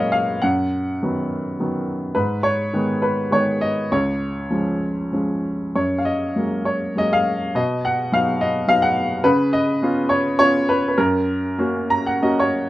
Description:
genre	classical, lyrical solo piano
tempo	91-109 BPM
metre	3/4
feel	rubato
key	F# major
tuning	A4 = 440 Hz
part	clear upright piano	solo	0.0-12.7 s	C#2 to A#5	-18 LUFS	equal	none
room	light reverb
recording	none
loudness	-18 LUFS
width	side -16 dB against mid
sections	0.0-12.7 A section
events	upright piano fill 11.6-12.7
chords	0.4 B/F#; 2.2 G#m; 3.9 C#; 5.8 F#add9; 7.5 B; 9.2 C#7; 11.0 F#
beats	| 0.44 1.03 1.61 | 2.17 2.74 3.32 | 3.91 4.51 5.13 | 5.76 6.37 6.96 | 7.55 8.12 8.68 | 9.25 9.82 10.39 | 10.98 11.59 12.23

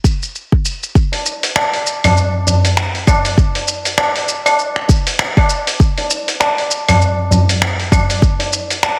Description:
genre	downtempo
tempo	99 BPM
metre	4/4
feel	swing 59% on 16ths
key	none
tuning	none
part	dusty soul sampler-style drum kit	drums	0.0-9.0 s	claves, finger snaps, hi-hat, shaker	-20 LUFS	equal	none
part	electronic kick drum	drums	0.0-8.4 s	none	-15 LUFS	equal	none
part	tabla	percussion	1.1-9.0 s	none	-18 LUFS	equal	none
room	moderate echo chamber reverb, RT60 1.6 s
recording	heavily compressed radio sound, multiband compression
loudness	-15 LUFS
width	mono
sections	1.0-9.0 A section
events	none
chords	none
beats	0.34 | 0.95 1.56 2.16 2.77 | 3.38 3.98 4.59 5.19 | 5.80 6.41 7.01 7.62 | 8.22 8.83

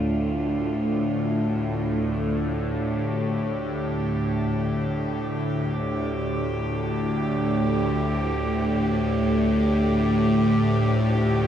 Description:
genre	dark ambient drone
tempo	free time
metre	none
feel	none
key	unclear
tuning	A4 = 440 Hz
part	warm symphonic cello section	sustained chords	0.0-11.5 s	D2 to G4	-28 LUFS	right 1 dB	none
part	bowed-like drone	drone	0.0-11.5 s	D2 to A2	-23 LUFS	equal	built-in reverb, phaser
room	wet cathedral reverb, RT60 5.1 s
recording	none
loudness	-22 LUFS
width	side -9 dB against mid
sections	0.0-11.5 A section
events	none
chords	0.0 Dm; 10.0 Fadd9/D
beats	free time

